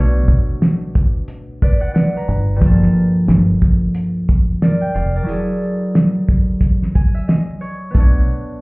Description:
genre	hip hop, boom-bap hip-hop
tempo	90 BPM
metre	4/4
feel	swing 59% on 16ths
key	unclear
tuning	A4 = 440 Hz
part	concert harp	accompaniment	0.0-8.6 s	G2 to A#5	-18 LUFS	equal	high-pass filter, low-pass filter
part	deep dub fingered electric bass	bass	0.0-8.2 s	F1 to B1	-14 LUFS	equal	none
part	cloth-damped thuddy drum kit	drums	0.3-8.5 s	hi-hat, kick drum, shaker, snare drum	-15 LUFS	equal	none
room	light reverb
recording	heard muffled through a wall, club reverb, vinyl crackle, EQ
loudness	-13 LUFS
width	side -27 dB against mid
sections	0.0-8.6 A section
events	break 5.3-7.9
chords	0.0 Bm9; 2.3 Gm9; 5.3 F#m9; 7.9 Bm9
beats	0.61 1.28 1.95 | 2.62 3.28 3.95 4.62 | 5.28 5.95 6.62 7.28 | 7.95

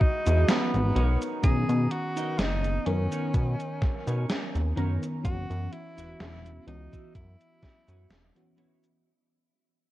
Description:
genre	vaporwave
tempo	63 BPM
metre	4/4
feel	swing 54% on 16ths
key	unclear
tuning	A4 = 440 Hz
part	breathy tenor saxophone	melody	0.0-8.5 s	B3 to G#4	-35 LUFS	equal	tape echo
part	FM electric piano with soft pad layer	accompaniment	0.0-9.1 s	D#3 to A#5	-33 LUFS	left 1 dB	tremolo, wide subtle chorus
part	clean electric guitar	riff	0.0-8.8 s	D#4 to E5	-37 LUFS	right 3 dB	analog chorus, vintage 12-bit sampler grit
part	electronic kick drum	drums	0.0-7.8 s	none	-25 LUFS	equal	none
part	chorused synth bass	bass	0.3-8.3 s	E1 to B2	-26 LUFS	equal	none
part	gated 80s digital drum machine	drums	0.3-9.0 s	cabasa, hi-hat, snare drum	-30 LUFS	equal	gated reverb, gated reverb snare
room	digital ambience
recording	cassette tape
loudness	-24 LUFS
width	side -15 dB against mid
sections	0.0-9.1 A section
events	fade-out 0.0-9.1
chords	0.0 Emaj9; 1.0 Bmaj9; 5.2 F#7sus4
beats	0.48 | 1.44 2.39 3.34 4.29 | 5.25 6.20 7.15 8.10

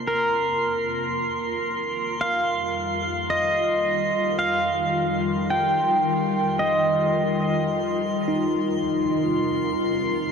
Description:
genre	ambient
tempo	55 BPM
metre	4/4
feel	straight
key	unclear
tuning	A4 = 440 Hz
part	evolving wavetable pad	sustained chords	0.0-10.3 s	F2 to Bb4	-26 LUFS	left 2 dB	ensemble chorus, built-in reverb, phaser
part	bell-like tine electric piano	arpeggios	0.0-10.3 s	Eb4 to A5	-26 LUFS	equal	wide subtle chorus, diffuse ambient delay
part	drifting glass-harmonics texture	texture	0.0-10.3 s	C6	-30 LUFS	right 1 dB	chorus, built-in reverb
part	pedal steel guitar	melody	0.1-7.7 s	Bb4 to G5	-24 LUFS	right 1 dB	diffuse ambient delay
room	wet huge ambient reverb, RT60 7.7 s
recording	dark, warm production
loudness	-21 LUFS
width	side -6 dB against mid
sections	0.0-10.3 A section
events	fade-in on ambient pad 0.0-10.3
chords	0.1 Ebadd9/F; 8.8 Fsus4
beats	| 0.07 1.16 2.25 3.34 | 4.43 5.53 6.62 7.71 | 8.80 9.89

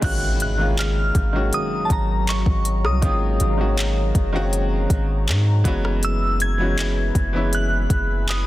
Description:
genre	contemporary R&B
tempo	80 BPM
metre	4/4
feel	straight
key	unclear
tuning	A4 = 439 Hz
part	glassy synth bell	melody	0.0-8.5 s	A5 to Ab6	-26 LUFS	equal	chorus, tremolo, tape echo
part	bright baby grand piano	accompaniment	0.0-8.5 s	Eb3 to Gb4	-26 LUFS	equal	none
part	deep dark ambient pad	sustained chords	0.0-8.5 s	Gb3 to Cb6	-31 LUFS	left 1 dB	chorus, built-in reverb
part	long sustained 808-style bass	bass	0.0-8.4 s	Gb1 to Ab2	-21 LUFS	equal	none
part	smooth R&B drum kit	drums	0.0-8.5 s	crash cymbal, handclaps, hi-hat, kick drum, rim click	-23 LUFS	equal	overdrive, soft clipping on snare
part	impact	sound effects	0.1-3.0 s	none	-32 LUFS	equal	none
room	digital ambience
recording	dense, heavily limited modern master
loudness	-18 LUFS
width	side -16 dB against mid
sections	0.0-8.5 A section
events	impact 0.0-3.0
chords	0.0 Ab9sus4; 5.6 Gb9sus4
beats	| 0.02 0.77 1.52 2.27 | 3.02 3.77 4.52 5.27 | 6.02 6.77 7.52 8.27

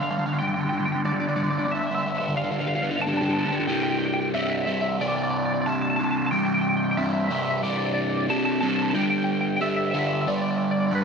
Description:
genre	rock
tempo	91 BPM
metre	4/4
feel	straight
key	C major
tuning	A4 = 438 Hz
part	twelve-string electric guitar	melody	0.0-11.0 s	B4 to A5	-27 LUFS	equal	analog chorus, analog delay
part	crunchy overdriven guitar	riff	0.0-11.0 s	C2 to G3	-24 LUFS	equal	phaser
room	moderate scoring stage reverb, RT60 1.7 s, digital ambience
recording	dark, warm production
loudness	-22 LUFS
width	side -5 dB against mid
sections	0.0-3.7 A section; 3.7-11.0 B section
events	build-up 0.0-3.7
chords	0.0 G5; 3.7 C; 9.0 G5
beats	0.38 | 1.04 1.70 2.36 3.02 | 3.68 4.34 5.00 5.66 | 6.32 6.97 7.63 8.29 | 8.95 9.61 10.27 10.93

